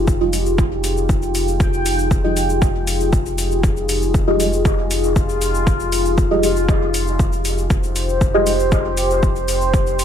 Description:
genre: dub techno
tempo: 118 BPM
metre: 4/4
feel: straight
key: F minor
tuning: A4 = 440 Hz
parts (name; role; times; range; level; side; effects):
- dark analog pad; sustained chords; 0.0-10.0 s; Eb4 to C5; -22 LUFS; left 1 dB; chorus, vintage 12-bit sampler grit, sidechain pumping
- soft dub sub bass; bass; 0.0-10.0 s; F1; -22 LUFS; equal; sidechain pumping
- bubbling stepped-filter texture; texture; 0.0-10.0 s; F4 to G5; -26 LUFS; left 1 dB; chorus, built-in reverb, sidechain pumping
- electronic kick drum; drums; 0.1-9.8 s; none; -18 LUFS; equal; overdrive
- electronic shaker and hi-hat; drums; 0.1-10.0 s; none; -27 LUFS; left 2 dB; overdrive
- deep mellow chord stab; stabs; 0.2-8.5 s; F4 to Eb5; -21 LUFS; equal; chorus, phaser, sidechain pumping, dub echo
room: light reverb, digital ambience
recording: echo-heavy mix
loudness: -15 LUFS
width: side -9 dB against mid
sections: 0.0-10.0 A section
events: filter sweep on synth stab 0.0-10.0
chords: 0.0 Fm9

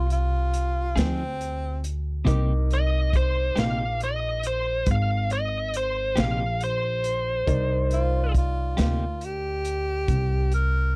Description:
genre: slow blues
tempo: 46 BPM (dotted quarters)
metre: 12/8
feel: straight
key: C minor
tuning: A4 = 438 Hz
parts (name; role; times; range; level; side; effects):
- biting lead guitar; melody; 0.0-8.3 s; C5 to F5; -29 LUFS; equal; overdrive
- clear tenor saxophone; second line; 0.0-11.0 s; C4 to Bb4; -32 LUFS; equal; none
- warm grand piano; accompaniment; 0.0-11.0 s; Eb4 to D6; -40 LUFS; equal; none
- upright bass; bass; 0.0-11.0 s; Ab1 to D2; -28 LUFS; equal; none
- crunchy breakbeat drum kit; drums; 0.1-10.7 s; hi-hat, kick drum, snare drum; -29 LUFS; equal; none
- clean electric guitar; accompaniment; 1.0-9.0 s; C3 to Ab4; -30 LUFS; equal; harmonic tremolo
room: little or no reverb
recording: dry, close 1970s-style studio recording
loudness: -25 LUFS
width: mono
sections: 0.0-11.0 A section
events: none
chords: 0.0 Fm7; 2.3 Cm7

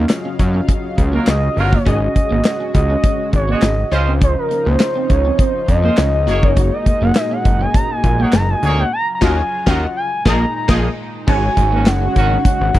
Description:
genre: early-eighties boogie funk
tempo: 102 BPM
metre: 4/4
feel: straight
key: unclear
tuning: A4 = 440 Hz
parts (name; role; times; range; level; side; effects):
- funky polysynth comp; accompaniment; 0.0-12.8 s; Ab3 to Eb5; -24 LUFS; left 2 dB; chorus
- chorused pulse-width pad; sustained chords; 0.0-12.8 s; Bb2 to F5; -28 LUFS; equal; none
- electric guitar at the edge of break-up; riff; 0.0-12.8 s; Ab3 to Gb4; -24 LUFS; right 3 dB; lush chorus
- fat analog bass; bass; 0.0-12.8 s; Gb1 to Ab2; -17 LUFS; equal; none
- modern studio drum kit; drums; 0.1-12.8 s; crash cymbal, handclaps, hi-hat, kick drum, snare drum; -15 LUFS; equal; none
- warm horn section; second line; 1.1-12.3 s; Eb3 to Db5; -24 LUFS; right 4 dB; none
- gliding portamento lead; melody; 1.3-12.8 s; Bb4 to Bb5; -20 LUFS; equal; chorus, phaser
room: small room ambience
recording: dry, close 1970s-style studio recording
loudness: -13 LUFS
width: side -15 dB against mid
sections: 0.0-11.3 A section; 11.3-12.8 B section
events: soft synth lead solo 0.0-11.3; band accent 8.9-11.3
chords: 0.0 Ebm9; 1.9 Ab7sus4; 3.9 Dbmaj9; 6.3 Gb69; 8.9 Ebm9; 10.1 Bb7sus4; 11.3 Ab7sus4

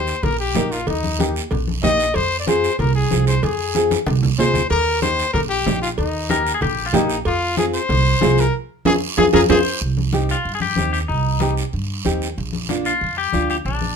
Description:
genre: latin, cumbia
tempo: 188 BPM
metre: 4/4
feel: straight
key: C minor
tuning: A4 = 441 Hz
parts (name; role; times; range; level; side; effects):
- clear trumpet; melody; 0.0-9.6 s; Eb4 to Eb5; -21 LUFS; left 3 dB; none
- nylon-string guitar; accompaniment; 0.0-13.6 s; Bb3 to Bb4; -21 LUFS; equal; none
- upright bass; bass; 0.0-14.0 s; Bb1 to G2; -22 LUFS; right 3 dB; none
- guiro; percussion; 0.1-14.0 s; none; -30 LUFS; right 7 dB; none
- congas; percussion; 0.2-14.0 s; none; -25 LUFS; left 4 dB; none
- cowbell and timbales; percussion; 0.2-9.6 s; none; -24 LUFS; right 4 dB; none
- twangy electric guitar; second line; 6.3-14.0 s; D4 to C5; -22 LUFS; left 5 dB; none
room: moderate studio reverb, RT60 0.6 s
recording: minimal, uncompressed stereo recording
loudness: -16 LUFS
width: side -6 dB against mid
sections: 0.0-9.8 A section; 9.8-14.0 B section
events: drum fill 3.8-4.7, 8.5-9.8; band accent 8.5-9.8; clean electric guitar solo 9.8-14.0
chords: 0.0 Eb; 2.2 Fm; 4.7 Eb; 7.3 Fm; 9.8 Cm; 12.4 Bb

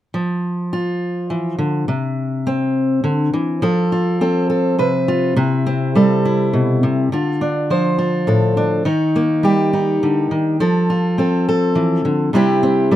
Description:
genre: folk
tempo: 103 BPM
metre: 3/4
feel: straight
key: unclear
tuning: A4 = 444 Hz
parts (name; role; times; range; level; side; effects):
- fingerpicked steel-string acoustic guitar; solo; 0.1-13.0 s; A2 to C5; -15 LUFS; equal; none
room: little or no reverb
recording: close, detailed microphones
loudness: -15 LUFS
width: side -13 dB against mid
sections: 0.1-3.6 A section; 3.6-13.0 B section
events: none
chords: 0.1 Dmadd9; 1.9 C; 3.6 F; 5.4 C; 7.1 Dm; 8.9 Eb; 10.6 F; 12.3 C

